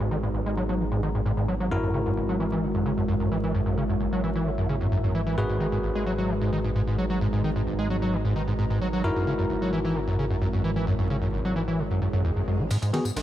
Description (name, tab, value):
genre	breakbeat, breaks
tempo	131 BPM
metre	4/4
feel	straight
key	G# minor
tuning	A4 = 440 Hz
part	deep dark ambient pad	sustained chords	0.0-13.2 s	G#3 to A#5	-32 LUFS	right 1 dB	chorus, built-in reverb, sidechain pumping
part	overdriven acid bass	riff	0.0-13.2 s	F#1 to G#3	-26 LUFS	equal	distortion, ensemble chorus, tape echo
part	bell-like tine electric piano	stabs	0.0-13.0 s	B3 to B4	-33 LUFS	left 2 dB	vintage 12-bit sampler grit, low-pass filter, tape echo
part	phased detuned saw bass	bass	0.0-12.7 s	G#1	-31 LUFS	equal	phaser
part	downlifter, swell and riser	sound effects	0.0-1.7, 12.0-13.2 s	none	-41 LUFS	equal	none
part	breakbeat sampler-style drum kit	drums	12.7-13.2 s	kick drum, ride cymbal, snare drum	-34 LUFS	right 2 dB	high-pass filter on kick, small room ambience, high-pass filter on cymbals, high-pass filter on snare
part	tambourine	drums	12.7-13.2 s	none	-39 LUFS	left 7 dB	small room ambience
room	little or no reverb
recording	vinyl crackle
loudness	-23 LUFS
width	side -12 dB against mid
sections	0.0-12.7 A section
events	filter sweep on acid bass 0.0-12.7; swell 12.0-12.7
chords	0.0 G#m7; 1.7 F#7; 5.4 G#m7; 9.0 F#7; 12.7 G#m7